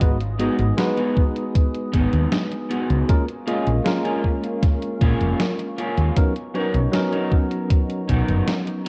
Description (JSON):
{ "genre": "vaporwave", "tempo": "78 BPM", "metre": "4/4", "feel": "straight", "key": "G# dorian", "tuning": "A4 = 440 Hz", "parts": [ { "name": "barky tine electric piano", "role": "accompaniment", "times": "0.0-8.9 s", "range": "F#3 to D#5", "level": "-27 LUFS", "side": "equal", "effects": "subtle chorus, analog delay" }, { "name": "warbly tape-like pad", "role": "sustained chords", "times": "0.0-8.9 s", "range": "B3 to D#6", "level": "-37 LUFS", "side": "equal", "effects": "chorus, built-in reverb" }, { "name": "woody fretless electric bass", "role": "bass", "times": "0.0-8.4 s", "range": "E#1 to D#2", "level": "-23 LUFS", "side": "equal", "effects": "none" }, { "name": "electronic kick drum", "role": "drums", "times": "0.0-8.2 s", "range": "none", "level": "-21 LUFS", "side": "equal", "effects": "vintage 12-bit sampler grit" }, { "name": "gated 80s digital drum machine", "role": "drums", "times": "0.0-8.9 s", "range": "hi-hat, snare drum", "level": "-29 LUFS", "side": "equal", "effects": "gated reverb, gated reverb snare, vintage 12-bit sampler grit" }, { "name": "electric guitar at the edge of break-up", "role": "riff", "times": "0.4-8.9 s", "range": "A#3 to A#4", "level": "-30 LUFS", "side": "equal", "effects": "lush chorus, vintage 12-bit sampler grit, analog delay" } ], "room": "light reverb, digital ambience", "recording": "worn, warbling old tape, cassette tape, warbly pitch drift, nothing above 10.8 kHz", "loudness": "-21 LUFS", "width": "mono", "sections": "0.0-8.9 A section", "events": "none", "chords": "0.0 G#m7; 3.1 A#m7; 6.2 Bmaj9" }